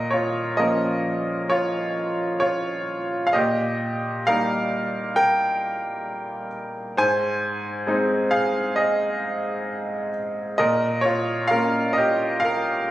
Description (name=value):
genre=classical, lyrical solo piano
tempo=65 BPM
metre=4/4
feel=rubato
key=Bb dorian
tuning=A4 = 440 Hz
part: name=bright grand piano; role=solo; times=0.0-12.9 s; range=Ab2 to Ab5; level=-21 LUFS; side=equal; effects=none
room=light reverb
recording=recorded on a phone in the room, studio reverb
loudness=-21 LUFS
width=side -15 dB against mid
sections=0.0-12.9 A section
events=none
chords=0.0 Bbm; 3.3 Eb/Bb; 7.0 Ab; 10.6 Bbm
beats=0.57 1.50 2.42 | 3.34 4.27 5.16 6.06 | 6.96 7.86 8.76 9.66 | 10.58 11.50 12.44